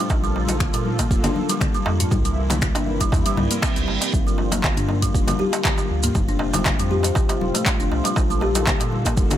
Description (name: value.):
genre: afro house.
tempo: 119 BPM.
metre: 4/4.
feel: swing 53% on 16ths.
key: unclear.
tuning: A4 = 440 Hz.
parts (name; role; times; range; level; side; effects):
warm analog pad; sustained chords; 0.0-9.4 s; A2 to A4; -28 LUFS; right 2 dB; chorus, sidechain pumping.
buzzing kalimba; arpeggios; 0.0-9.4 s; G3 to G4; -25 LUFS; left 2 dB; sidechain pumping, tape echo.
warm sub bass; bass; 0.1-9.3 s; F1 to Bb2; -25 LUFS; equal; sidechain pumping.
electronic kick drum; drums; 0.1-9.3 s; none; -22 LUFS; equal; overdrive.
congas; percussion; 0.1-9.4 s; none; -29 LUFS; left 4 dB; none.
darbuka; percussion; 0.1-9.4 s; none; -31 LUFS; right 3 dB; none.
maracas; percussion; 0.1-9.4 s; none; -32 LUFS; right 6 dB; none.
afro-pop drum kit; drums; 0.5-9.4 s; finger snaps, handclaps, hi-hat, toms; -26 LUFS; left 1 dB; none.
reverse cymbal; sound effects; 3.3-4.1 s; none; -29 LUFS; right 5 dB; none.
room: small room ambience.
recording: none.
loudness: -18 LUFS.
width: side -11 dB against mid.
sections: 0.0-9.4 A section.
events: reverse cymbal 3.3-4.1.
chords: 0.1 Bbmaj7; 2.1 C7; 4.1 Gm7; 6.2 F; 8.2 Bbmaj7.